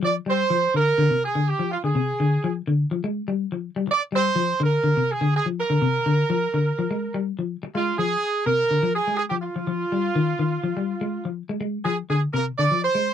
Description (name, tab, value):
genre	afrobeat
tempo	124 BPM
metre	4/4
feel	straight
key	Bb mixolydian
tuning	A4 = 440 Hz
part	bright horn section	melody	0.0-13.1 s	F4 to D5	-23 LUFS	right 4 dB	none
part	semi-hollow electric guitar	arpeggios	0.0-13.1 s	C3 to Ab3	-24 LUFS	left 3 dB	none
room	wet booth ambience, RT60 0.2 s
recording	dry, close 1970s-style studio recording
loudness	-21 LUFS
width	side -9 dB against mid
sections	0.0-7.7 A section; 7.7-13.1 B section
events	none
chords	0.0 Bb; 7.7 Bb7(no3) (rootless)